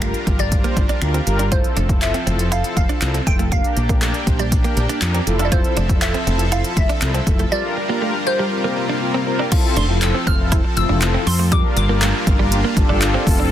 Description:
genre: dance-pop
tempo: 120 BPM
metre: 4/4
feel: straight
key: F major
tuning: A4 = 440 Hz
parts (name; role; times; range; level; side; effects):
- glassy wavetable pluck; melody; 0.0-12.2 s; C5 to F6; -26 LUFS; equal; chorus, dub echo
- mellow synth brass; accompaniment; 0.0-13.5 s; C4 to C5; -25 LUFS; left 2 dB; chorus, sidechain pumping
- supersaw pad; sustained chords; 0.0-13.5 s; C3 to E5; -25 LUFS; equal; sidechain pumping
- direct-recorded clean electric guitar; riff; 0.0-13.5 s; G3 to F4; -27 LUFS; right 5 dB; analog chorus
- woody fretless electric bass; bass; 0.0-13.5 s; F1 to F2; -20 LUFS; equal; sidechain pumping
- deep house drum kit; drums; 0.0-13.4 s; crash cymbal, finger snaps, handclaps, hi-hat, kick drum; -19 LUFS; equal; soft clipping on snare
room: little or no reverb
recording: dense, heavily limited modern master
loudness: -16 LUFS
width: side -11 dB against mid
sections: 0.0-9.5 A section; 9.5-13.5 B section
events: none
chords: 0.0 Gm7; 1.5 Fmaj7; 3.5 Bb6; 5.3 Fmaj7; 7.5 Gm7; 8.5 C7sus4; 9.5 Fmaj7; 11.5 Gm7

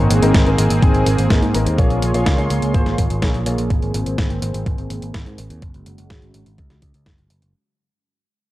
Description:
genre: italo disco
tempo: 125 BPM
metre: 4/4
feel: straight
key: Ab mixolydian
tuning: A4 = 444 Hz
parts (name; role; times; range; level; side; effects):
- lush unison pad; sustained chords; 0.0-7.5 s; Ab3 to C6; -22 LUFS; right 2 dB; chorus
- clear grand piano; stabs; 0.0-3.7 s; Ab3 to Db5; -23 LUFS; left 3 dB; tape echo
- picked electric bass; bass; 0.0-7.5 s; Gb1 to Ab2; -20 LUFS; equal; transformer saturation
- clean 12-bit digital drum machine; drums; 0.1-7.5 s; hi-hat, snare drum; -24 LUFS; equal; none
- electronic kick drum; drums; 0.3-7.2 s; none; -18 LUFS; equal; none
room: little or no reverb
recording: dry, gritty hardware recording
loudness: -15 LUFS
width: side -16 dB against mid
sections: 0.0-7.5 A section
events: fade-out 0.0-7.5; filter sweep on analog synth pad 0.0-7.5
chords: 0.0 Abadd9; 1.8 Bbm7; 3.7 Abadd9; 5.6 Gbsus2

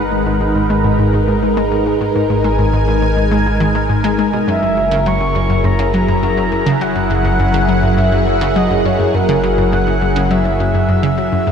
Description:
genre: ambient, sequencer-driven space music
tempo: 103 BPM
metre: 4/4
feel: straight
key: unclear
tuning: A4 = 440 Hz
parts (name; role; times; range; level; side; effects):
- lush unison pad; sustained chords; 0.0-11.5 s; F#3 to G#5; -16 LUFS; equal; chorus, phaser, shimmer reverb
- fat analog bass; bass; 0.0-11.5 s; F#1 to G#1; -19 LUFS; equal; none
- analog pluck; riff; 0.1-11.5 s; F#2 to G#3; -18 LUFS; left 1 dB; chorus, ping-pong delay
- breathy flute-like synth lead; melody; 4.5-11.5 s; A#4 to C#6; -19 LUFS; equal; lush chorus, shimmer reverb, ping-pong delay
room: wet lush hall reverb, RT60 2.6 s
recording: dark, warm production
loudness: -12 LUFS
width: side -7 dB against mid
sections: 0.0-11.5 A section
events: none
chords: 0.0 G#m7; 4.5 F#7

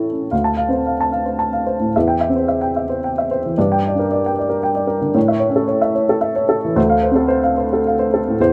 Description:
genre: neoclassical minimalist piano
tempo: 112 BPM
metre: 3/4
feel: rubato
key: D minor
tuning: A4 = 440 Hz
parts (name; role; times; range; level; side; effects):
- dark upright piano; solo; 0.0-8.5 s; D2 to A5; -18 LUFS; equal; none
room: light reverb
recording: none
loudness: -18 LUFS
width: mono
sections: 0.3-8.5 A section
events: none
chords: 0.3 Dm7; 2.0 C/E; 3.6 Gm; 5.2 A; 6.8 Dm7

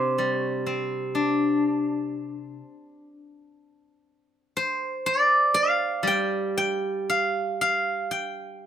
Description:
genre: chinese traditional, Chinese solo plucked strings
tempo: 61 BPM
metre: 4/4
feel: rubato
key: unclear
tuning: A4 = 440 Hz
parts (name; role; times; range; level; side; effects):
- steel-string zither; solo; 0.0-8.7 s; C3 to G5; -23 LUFS; equal; none
room: light reverb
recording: rough home demo mix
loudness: -22 LUFS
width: side -9 dB against mid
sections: 0.0-8.7 A section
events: none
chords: none

